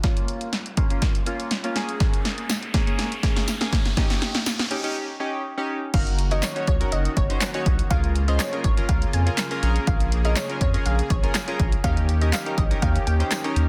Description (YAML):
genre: dance-pop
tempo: 122 BPM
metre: 4/4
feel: straight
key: Bb minor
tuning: A4 = 440 Hz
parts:
  - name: chorused retro synth keys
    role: accompaniment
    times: 0.0-13.7 s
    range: Bb3 to Db5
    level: -32 LUFS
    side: equal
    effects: sidechain pumping, low-pass filter
  - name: punchy analog drum machine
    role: drums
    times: 0.0-13.7 s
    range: crash cymbal, handclaps, hi-hat, kick drum, snare drum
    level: -26 LUFS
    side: equal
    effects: soft clipping on snare
  - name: riser and impact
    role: sound effects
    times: 0.0-5.0 s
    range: none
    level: -37 LUFS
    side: equal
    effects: none
  - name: tambourine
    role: percussion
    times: 2.5-13.4 s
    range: none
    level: -37 LUFS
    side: equal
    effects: none
  - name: glassy wavetable pluck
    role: melody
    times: 5.9-13.2 s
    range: Db5 to Ab5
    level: -34 LUFS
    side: equal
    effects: chorus
  - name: soft supersaw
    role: sustained chords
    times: 5.9-13.7 s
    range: Db3 to Ab4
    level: -36 LUFS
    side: equal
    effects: sidechain pumping
  - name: saturated sub bass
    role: bass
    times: 5.9-13.7 s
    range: Gb1 to F2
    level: -25 LUFS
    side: equal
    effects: sidechain pumping
room: light reverb, digital ambience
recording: dense, heavily limited modern master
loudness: -23 LUFS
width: mono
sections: 0.0-5.9 A section; 5.9-13.7 B section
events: build-up 0.0-5.9; drum fill 0.0-5.0; riser 0.0-5.9; filter sweep on synth keys 0.0-5.9; break 5.0-5.9; drop 5.9-13.7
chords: 0.0 Db6; 1.8 Bbm7; 4.0 Eb7; 5.9 Gb6; 7.9 Db6; 9.6 Bbm7; 11.8 Eb7